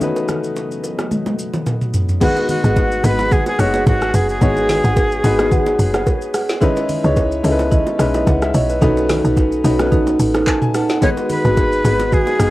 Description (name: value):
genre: amapiano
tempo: 109 BPM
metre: 4/4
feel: swing 55% on 16ths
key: unclear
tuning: A4 = 440 Hz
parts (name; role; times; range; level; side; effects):
- clear baby grand piano; accompaniment; 0.0-12.5 s; G#3 to A5; -20 LUFS; left 3 dB; cassette tape
- deep dark ambient pad; sustained chords; 0.0-2.2 s; B2 to D#5; -30 LUFS; equal; chorus, built-in reverb, cassette tape
- smooth R&B drum kit; drums; 0.0-12.5 s; crash cymbal, handclaps, hi-hat, kick drum, rim click, shaker, snare drum, toms; -19 LUFS; equal; cassette tape
- congas and bongos; percussion; 0.0-12.4 s; none; -26 LUFS; right 2 dB; none
- breathy bright jazz flute; melody; 2.2-5.9, 11.0-12.5 s; F#4 to C#5; -20 LUFS; equal; cassette tape, tape echo
- marimba with medium mallets; stabs; 2.2-12.2 s; D#4 to F#5; -20 LUFS; right 3 dB; cassette tape, tape echo
- tight log drum bass; bass; 2.6-12.5 s; F#1 to C#2; -19 LUFS; equal; none
room: light reverb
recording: home recording on cassette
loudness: -14 LUFS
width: side -17 dB against mid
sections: 0.0-2.2 A section; 2.2-12.5 B section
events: drum fill 1.1-2.2; drop 2.2-12.5; grand piano fill 10.2-11.0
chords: 0.0 B7; 2.2 G#m7; 6.6 C#m9; 8.8 B7; 11.0 G#m7